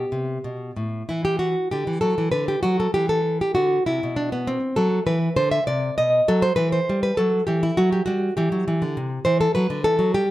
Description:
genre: classical, baroque-style dance for nylon-string guitar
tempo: 99 BPM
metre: 3/4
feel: rubato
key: E minor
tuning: A4 = 441 Hz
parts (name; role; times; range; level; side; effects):
- nylon-string guitar; solo; 0.0-10.3 s; A2 to E5; -20 LUFS; equal; slapback echo
room: light reverb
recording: none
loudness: -19 LUFS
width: side -15 dB against mid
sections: 0.0-1.1 A section; 1.1-10.3 A section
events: none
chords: 0.0 G; 1.1 Dadd9 (rootless); 2.3 Dadd11; 3.0 C; 4.8 Cmaj9#11; 6.0 B; 6.6 Em; 8.4 C; 9.6 D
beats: 0.43 | 1.09 1.71 2.33 | 2.95 3.56 4.18 | 4.77 5.37 5.98 | 6.59 7.19 7.79 | 8.39 8.98 9.56 | 10.15

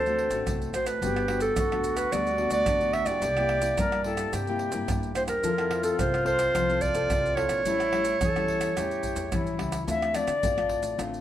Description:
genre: samba and choro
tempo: 108 BPM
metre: 4/4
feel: straight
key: D minor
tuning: A4 = 440 Hz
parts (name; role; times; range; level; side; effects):
- warm clarinet; melody; 0.0-9.6 s; A4 to E5; -27 LUFS; right 2 dB; plate reverb, tape echo
- silver concert flute; second line; 0.0-11.0 s; E4 to E5; -31 LUFS; left 2 dB; none
- nylon-string guitar; accompaniment; 0.0-11.2 s; G2 to A4; -32 LUFS; left 5 dB; none
- upright bass; bass; 0.0-11.2 s; G1 to D3; -35 LUFS; equal; none
- maracas, pandeiro, surdo and tamborim; percussion; 0.1-11.2 s; none; -33 LUFS; right 1 dB; none
room: moderate large studio reverb, RT60 0.9 s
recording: none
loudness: -24 LUFS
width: side -11 dB against mid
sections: 0.0-9.9 A section; 9.9-11.2 B section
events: flute solo 9.9-11.2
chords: 0.0 D7; 1.0 Gmaj7; 3.2 C7; 5.4 Fmaj7; 7.7 A7; 9.9 Dm7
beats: 0.47 | 1.02 1.57 2.13 2.68 | 3.23 3.79 4.34 4.89 | 5.45 6.00 6.55 7.11 | 7.66 8.21 8.77 9.32 | 9.87 10.43 10.98

